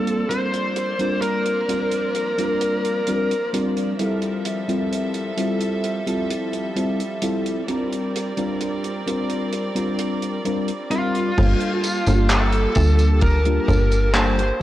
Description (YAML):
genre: vaporwave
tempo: 65 BPM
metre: 4/4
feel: straight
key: unclear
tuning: A4 = 440 Hz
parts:
  - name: high-gain lead guitar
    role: melody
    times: 0.0-3.5, 10.9-14.6 s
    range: F4 to C5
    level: -24 LUFS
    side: equal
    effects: distortion, tape echo
  - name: mellow FM electric piano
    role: accompaniment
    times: 0.0-14.6 s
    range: G3 to Bb4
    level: -24 LUFS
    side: left 1 dB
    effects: lush chorus, tape echo
  - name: clear studio string section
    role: sustained chords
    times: 0.0-14.6 s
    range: F3 to A5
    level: -30 LUFS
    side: right 1 dB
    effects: low-pass filter
  - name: deep reggae drum kit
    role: drums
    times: 0.1-14.6 s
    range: crash cymbal, handclaps, hi-hat, tambourine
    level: -27 LUFS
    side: right 1 dB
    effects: studio reverb, gated reverb
  - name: slap-like FM bass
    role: bass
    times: 11.4-14.5 s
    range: G1 to D2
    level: -18 LUFS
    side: equal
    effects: tube saturation
  - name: kick drum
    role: drums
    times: 11.4-13.9 s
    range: none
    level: -21 LUFS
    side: equal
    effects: studio reverb
room: light reverb, studio ambience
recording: cassette tape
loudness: -19 LUFS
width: side -14 dB against mid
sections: 0.0-11.4 A section; 11.4-14.6 B section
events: none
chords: 0.0 C9sus4; 4.0 Fmaj9; 7.7 Bb69; 11.4 Gm9